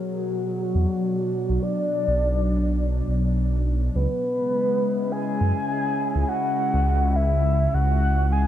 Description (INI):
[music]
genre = IDM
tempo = 103 BPM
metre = 4/4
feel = swing 56% on 16ths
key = unclear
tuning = A4 = 440 Hz
[part]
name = warbly nostalgic lead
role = melody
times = 0.0-8.5 s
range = F#4 to G#5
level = -25 LUFS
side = equal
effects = chorus, tape echo
[part]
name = warbly tape-like pad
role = sustained chords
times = 0.0-8.5 s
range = B2 to A#4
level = -27 LUFS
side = left 2 dB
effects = chorus, built-in reverb
[part]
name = dark detuned saw bass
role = bass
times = 0.8-8.5 s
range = B1 to F#2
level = -21 LUFS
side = equal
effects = none
[sound]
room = moderate spring reverb, RT60 1.2 s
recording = echo-heavy mix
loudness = -21 LUFS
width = side -11 dB against mid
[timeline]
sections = 0.0-8.5 A section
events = none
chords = 0.0 Bm; 4.0 C#m7